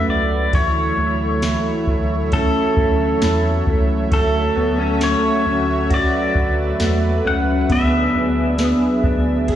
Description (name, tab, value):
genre	dream pop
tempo	67 BPM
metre	4/4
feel	straight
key	D lydian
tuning	A4 = 443 Hz
part	pedal steel guitar	melody	0.0-9.6 s	A4 to F#5	-22 LUFS	equal	tape echo
part	warm analog pad	sustained chords	0.0-9.6 s	F#3 to F#5	-23 LUFS	right 3 dB	chorus, tremolo
part	mellow electric guitar	arpeggios	0.0-9.6 s	E3 to G#4	-21 LUFS	left 1 dB	ensemble chorus, tape echo
part	sub bass with octave	bass	0.0-9.6 s	C#2 to E2	-22 LUFS	equal	none
part	soft vintage rhythm box	drums	0.5-9.6 s	kick drum, ride cymbal, snare drum, tambourine	-21 LUFS	equal	none
room	light reverb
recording	played on a big sound system in a bare room, stone room reverb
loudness	-15 LUFS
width	side -11 dB against mid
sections	0.0-9.6 A section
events	none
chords	0.0 Dmaj7; 0.5 A/D; 4.1 Dmaj7; 7.7 E/D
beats	| 0.53 1.43 2.32 3.22 | 4.12 5.01 5.91 6.80 | 7.70 8.59 9.49